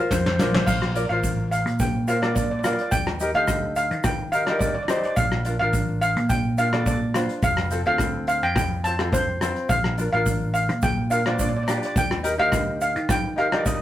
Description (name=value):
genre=calypso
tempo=106 BPM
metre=4/4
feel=straight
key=Bb major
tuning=A4 = 441 Hz
part: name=tenor ukulele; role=accompaniment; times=0.0-13.8 s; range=C4 to F5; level=-27 LUFS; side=left 1 dB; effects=none
part: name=steel pan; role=melody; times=0.1-13.8 s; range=C5 to A5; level=-24 LUFS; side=equal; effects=none
part: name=fingered electric bass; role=bass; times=0.1-13.8 s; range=F1 to Eb3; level=-27 LUFS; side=equal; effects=none
part: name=soft brush drum kit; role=drums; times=0.1-13.8 s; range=crash cymbal, hi-hat, kick drum, rim click, snare drum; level=-25 LUFS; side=equal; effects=none
part: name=egg shaker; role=percussion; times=0.1-13.8 s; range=none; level=-38 LUFS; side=right 5 dB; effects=none
room=moderate studio reverb, RT60 0.5 s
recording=rough rehearsal-room recording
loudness=-20 LUFS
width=side -13 dB against mid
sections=0.7-13.8 A section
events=drum fill 0.1-0.7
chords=0.0 Bb; 0.7 Bbmaj7; 2.9 Ebmaj7; 5.2 Bbmaj7; 7.4 F; 9.7 Bbmaj7; 12.0 Ebmaj7